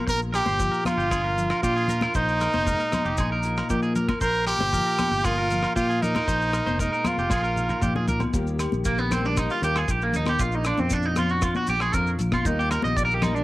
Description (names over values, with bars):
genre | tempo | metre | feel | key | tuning
highlife guitar band | 116 BPM | 4/4 | straight | Bb mixolydian | A4 = 440 Hz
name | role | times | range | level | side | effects
fingerpicked steel-string acoustic guitar | accompaniment | 0.0-13.4 s | Bb2 to C5 | -32 LUFS | left 3 dB | cassette tape
electric guitar at the edge of break-up | arpeggios | 0.0-13.4 s | Bb3 to Eb5 | -27 LUFS | right 2 dB | cassette tape, analog delay
brilliant trumpet | melody | 0.1-8.1 s | Eb4 to Bb4 | -25 LUFS | right 1 dB | cassette tape, plate reverb
fingered electric bass | bass | 0.1-13.4 s | F1 to Bb2 | -27 LUFS | equal | none
damped 70s drum kit | drums | 0.1-13.3 s | hi-hat, kick drum, rim click, snare drum, toms | -30 LUFS | equal | cassette tape
maracas | percussion | 0.1-13.4 s | none | -40 LUFS | left 4 dB | none
agogo bells | percussion | 0.3-13.4 s | none | -37 LUFS | right 1 dB | none
congas | percussion | 0.5-13.3 s | none | -30 LUFS | left 3 dB | none
room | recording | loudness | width
light reverb | home recording on cassette | -21 LUFS | side -18 dB against mid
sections
0.0-8.3 A section; 8.3-13.4 B section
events
drum fill 7.3-8.3; clean electric guitar solo 8.3-13.4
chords
0.1 Bb; 2.2 Ab; 3.2 Ebsus2/Bb; 4.2 Bb5; 6.3 Ab; 7.3 Ebsus2/Bb; 8.3 Ebadd9; 10.4 Bb; 12.5 Ebadd9